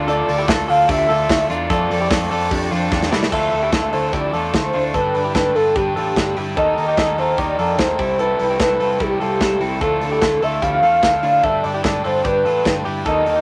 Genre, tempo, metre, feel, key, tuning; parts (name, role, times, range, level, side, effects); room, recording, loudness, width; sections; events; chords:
jangly indie pop; 148 BPM; 4/4; straight; D dorian; A4 = 439 Hz
raw garage guitar; accompaniment; 0.0-13.4 s; C3 to D5; -27 LUFS; equal; overdrive
direct-recorded clean electric guitar; arpeggios; 0.0-13.4 s; C4 to A4; -25 LUFS; equal
picked electric bass; bass; 0.0-13.4 s; G1 to F2; -29 LUFS; equal
warm velvety synth lead; melody; 0.1-13.4 s; G4 to A5; -21 LUFS; equal; chorus
modern studio drum kit; drums; 0.1-13.4 s; crash cymbal, hi-hat, kick drum, snare drum; -24 LUFS; equal
moderate studio reverb, RT60 0.6 s; -18 LUFS; mono
0.0-3.3 A section; 3.3-13.4 B section
drum fill 2.9-3.3
0.0 Dm; 1.7 F6; 3.3 Dmadd9; 4.9 G; 6.6 Eb; 8.0 C6; 9.8 Dmadd9; 11.4 G